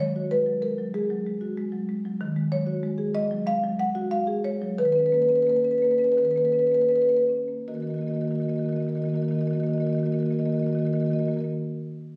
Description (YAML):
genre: classical, contemporary piece for solo marimba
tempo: 77-96 BPM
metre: 4/4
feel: straight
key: Eb minor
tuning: A4 = 439 Hz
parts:
  - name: marimba with soft mallets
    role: solo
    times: 0.0-11.5 s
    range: Eb3 to Gb5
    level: -25 LUFS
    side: equal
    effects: none
room: moderate recital hall reverb, RT60 1.4 s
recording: recorded on a phone in the room, studio reverb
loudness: -25 LUFS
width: mono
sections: 0.0-7.7 A section; 7.7-10.7 B section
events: slowing down 0.9-7.7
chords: 0.0 Ebmadd11; 4.8 Bmaj9/D#; 7.7 Ebm